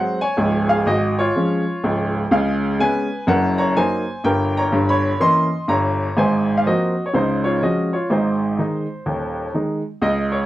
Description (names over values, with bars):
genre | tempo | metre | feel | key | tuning
jazz, stride piano | 125 BPM | 4/4 | swing 63% on 8ths | Db major | A4 = 440 Hz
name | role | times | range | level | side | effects
clear upright piano | solo | 0.0-10.5 s | Db1 to C6 | -17 LUFS | equal | none
room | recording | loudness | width
moderate studio reverb, RT60 0.5 s | dark, warm production | -17 LUFS | side -15 dB against mid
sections
0.0-10.0 A section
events
none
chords
0.4 Db; 2.3 Db7; 3.3 Gb6; 4.2 Gdim7; 6.2 Ab13; 7.1 Db; 8.1 Ab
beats
| 0.40 0.88 1.36 1.84 | 2.32 2.80 3.28 3.77 | 4.25 4.73 5.21 5.69 | 6.17 6.65 7.13 7.61 | 8.09 8.57 9.05 9.54 | 10.02